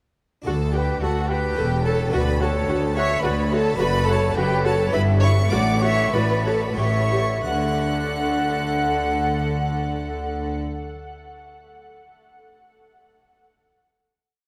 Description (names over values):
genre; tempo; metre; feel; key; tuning
classical, baroque-style concerto movement with solo episodes; 87-109 BPM; 3/4; straight; D major; A4 = 440 Hz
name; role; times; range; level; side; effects
harpsichord; accompaniment; 0.4-10.9 s; D2 to D5; -35 LUFS; equal; none
concert flute; melody; 0.5-10.6 s; A4 to F#5; -29 LUFS; equal; none
rich chamber violin section; melody; 0.5-10.6 s; F#5 to F#6; -33 LUFS; equal; none
rich chamber violin section; second line; 0.5-10.6 s; F#4 to F#5; -29 LUFS; equal; none
rich chamber viola section; accompaniment; 0.5-10.6 s; E4 to A4; -32 LUFS; equal; none
clear chamber double bass section; bass; 0.5-10.6 s; E1 to D2; -28 LUFS; equal; none
clear studio cello section; bass; 0.5-10.6 s; D2 to D3; -28 LUFS; equal; none
room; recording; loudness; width
wet huge ambient reverb, RT60 7.7 s; in a vast, echoing space; -22 LUFS; mono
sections
0.5-7.4 ritornello; 7.4-11.6 final chord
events
slowing down 3.0-7.4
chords
0.5 D; 1.6 A7/E; 2.1 D; 3.8 D/F#; 4.9 Em/G; 5.5 D/A; 6.8 A7; 7.4 D